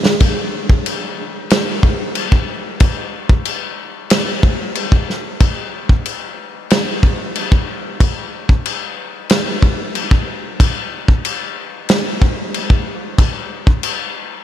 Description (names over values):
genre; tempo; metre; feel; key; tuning
rock; 92 BPM; 4/4; straight; none; none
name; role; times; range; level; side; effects
loose indie drum kit; drums; 0.1-14.0 s; crash cymbal, kick drum, snare drum; -15 LUFS; equal; none
room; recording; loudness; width
moderate huge ambient reverb, RT60 6.2 s; none; -15 LUFS; side -11 dB against mid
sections
0.2-14.4 A section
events
drum fill 0.0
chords
none